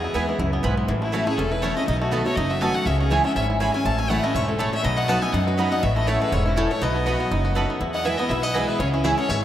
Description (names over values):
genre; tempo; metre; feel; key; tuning
bluegrass; 243 BPM; 4/4; swing 55% on 8ths; E major; A4 = 440 Hz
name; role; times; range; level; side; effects
bluegrass banjo; melody; 0.0-9.4 s; E3 to A4; -29 LUFS; equal; none
clear fiddle; melody; 0.0-9.4 s; E4 to B5; -28 LUFS; left 2 dB; none
picked steel-string acoustic guitar; accompaniment; 0.0-9.4 s; E2 to F#4; -26 LUFS; left 1 dB; none
upright bass; bass; 0.0-9.4 s; E1 to F#2; -26 LUFS; equal; none
mandolin; stabs; 0.1-9.1 s; A3 to B5; -28 LUFS; right 3 dB; none
lap resonator guitar; second line; 3.4-9.4 s; C#4 to G#5; -29 LUFS; left 2 dB; none
room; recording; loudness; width
wet cathedral reverb, RT60 6.7 s; in a vast, echoing space; -20 LUFS; side -11 dB against mid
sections
0.0-9.4 A section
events
none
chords
0.0 E; 0.9 A; 1.9 B7; 2.9 C#m; 3.9 A; 4.8 B; 5.8 A; 6.8 B; 7.8 E; 8.8 C#m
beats
0.15 0.40 0.64 | 0.89 1.14 1.38 1.63 | 1.88 2.13 2.37 2.62 | 2.87 3.12 3.36 3.61 | 3.86 4.10 4.35 4.60 | 4.84 5.09 5.34 5.59 | 5.83 6.08 6.33 6.58 | 6.82 7.07 7.32 7.56 | 7.81 8.06 8.30 8.55 | 8.80 9.05 9.29